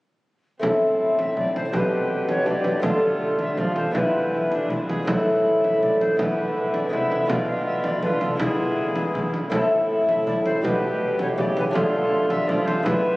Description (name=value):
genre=classical, renaissance-style consort dance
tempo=162 BPM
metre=3/4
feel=straight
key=A minor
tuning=A4 = 439 Hz
part: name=mellow alto recorder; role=melody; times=0.6-13.2 s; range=G#4 to F5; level=-27 LUFS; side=equal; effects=none
part: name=warm viola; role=second line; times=0.6-13.2 s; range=C4 to G#4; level=-29 LUFS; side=equal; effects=none
part: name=lute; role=accompaniment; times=0.6-13.2 s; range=A2 to D5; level=-24 LUFS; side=left 1 dB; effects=none
part: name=warm bassoon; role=bass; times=0.6-13.2 s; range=A2 to F3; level=-27 LUFS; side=equal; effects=none
part: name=frame drum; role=percussion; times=0.6-13.0 s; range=none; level=-27 LUFS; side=right 1 dB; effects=none
room=wet cathedral reverb, RT60 6.7 s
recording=recorded on a phone in the room, club reverb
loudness=-20 LUFS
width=side -20 dB against mid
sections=0.6-9.5 A section; 9.5-13.2 A section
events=none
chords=0.6 Am; 1.7 G/B; 2.8 Dm; 4.0 E; 5.1 Am; 6.2 E; 7.3 Bdim; 8.4 E; 9.5 Am; 10.6 G/B; 11.7 Dm